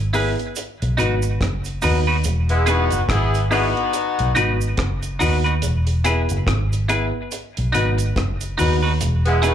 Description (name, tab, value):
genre	roots reggae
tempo	71 BPM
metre	4/4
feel	swing 59% on 16ths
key	E major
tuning	A4 = 436 Hz
part	vintage muted fingered electric bass	bass	0.0-9.5 s	E1 to D#2	-20 LUFS	equal	none
part	semi-hollow electric guitar	accompaniment	0.1-9.5 s	D#4 to B4	-24 LUFS	right 2 dB	phaser, dub echo, slapback echo
part	warm upright piano	stabs	0.1-9.5 s	B3 to B4	-25 LUFS	left 3 dB	slapback echo
part	deep reggae drum kit	drums	0.1-9.5 s	hi-hat, kick drum, rim click	-27 LUFS	right 1 dB	none
part	cabasa	percussion	0.1-9.5 s	none	-36 LUFS	right 7 dB	none
part	warm horn section	second line	2.5-9.5 s	G#3 to G#4	-22 LUFS	left 2 dB	dub echo, slapback echo
room	light reverb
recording	live gig heard through the venue's PA, club reverb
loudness	-17 LUFS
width	side -10 dB against mid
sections	0.0-9.5 A section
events	none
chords	0.0 E; 0.6 B; 2.2 E; 3.9 B; 5.6 E; 7.3 B; 9.0 E